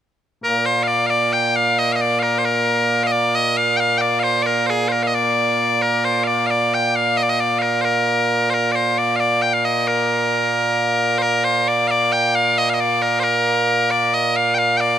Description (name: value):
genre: scottish traditional, Scottish pipe music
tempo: 89 BPM (dotted quarters)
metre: 6/8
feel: straight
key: Bb major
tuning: A4 = 445 Hz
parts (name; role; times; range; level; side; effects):
- loud bright bagpipes; solo; 0.4-15.0 s; Bb2 to G5; -16 LUFS; equal; none
room: moderate huge ambient reverb, RT60 5.3 s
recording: none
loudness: -16 LUFS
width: side -10 dB against mid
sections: 0.4-11.2 A section; 11.2-15.0 A section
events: none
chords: none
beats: | 0.43 1.10 | 1.78 2.45 | 3.13 3.80 | 4.47 5.15 | 5.82 6.50 | 7.17 7.84 | 8.52 9.19 | 9.87 10.54 | 11.22 11.89 | 12.56 13.24 | 13.91 14.59